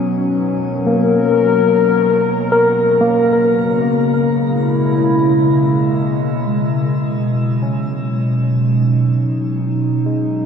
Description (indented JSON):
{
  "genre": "ambient",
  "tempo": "56 BPM",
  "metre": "3/4",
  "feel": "straight",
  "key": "B major",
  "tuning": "A4 = 440 Hz",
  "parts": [
    { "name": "warbly tape-like pad", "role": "sustained chords", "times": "0.0-10.5 s", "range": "B2 to A#4", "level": "-15 LUFS", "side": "left 1 dB", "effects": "chorus, built-in reverb, shimmer reverb" },
    { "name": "analog drone", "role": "drone", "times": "0.0-6.6 s", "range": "B2", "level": "-26 LUFS", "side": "left 1 dB", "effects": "chorus" },
    { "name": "barky tine electric piano", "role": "arpeggios", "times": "0.9-10.5 s", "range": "G#3 to A#4", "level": "-18 LUFS", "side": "left 1 dB", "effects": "ping-pong delay, shimmer reverb" }
  ],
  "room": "wet huge ambient reverb, RT60 7.5 s",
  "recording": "none",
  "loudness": "-13 LUFS",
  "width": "side -7 dB against mid",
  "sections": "0.0-6.5 A section; 6.5-10.5 A section",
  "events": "none",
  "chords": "0.1 F#; 3.3 C#m7; 6.5 B6"
}